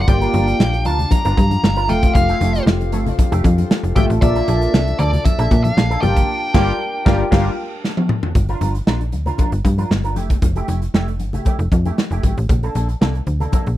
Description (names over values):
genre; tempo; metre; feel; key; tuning
early-eighties boogie funk; 116 BPM; 4/4; straight; G dorian; A4 = 440 Hz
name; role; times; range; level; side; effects
nasal lead guitar with a parked wah; melody; 0.0-7.8 s; D5 to Bb5; -24 LUFS; equal; overdrive, tape echo
mellow large flute ensemble; sustained chords; 0.0-8.3 s; C4 to A5; -29 LUFS; left 3 dB; none
electric guitar with an envelope filter; riff; 0.0-13.7 s; A3 to Bb4; -27 LUFS; right 3 dB; analog chorus
slap-like FM bass; bass; 0.0-13.8 s; F1 to Bb2; -18 LUFS; equal; none
chorused polysynth; accompaniment; 0.1-7.5 s; A3 to F5; -21 LUFS; left 1 dB; none
modern studio drum kit; drums; 0.1-13.8 s; crash cymbal, hi-hat, kick drum, snare drum, toms; -17 LUFS; equal; none
congas; percussion; 0.1-13.8 s; none; -27 LUFS; left 4 dB; none
analog synth brass; second line; 6.5-7.5 s; G3 to Bb4; -25 LUFS; left 4 dB; chorus
room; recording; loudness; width
studio reverb; none; -15 LUFS; side -14 dB against mid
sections
0.0-8.4 A section; 8.4-13.8 B section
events
band accent 6.3-8.4; drum fill 7.8-8.4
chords
0.1 Gm7; 1.9 Fmaj9; 4.2 Bbmaj7; 6.0 Gm7; 10.2 Fmaj9; 12.5 Bbmaj7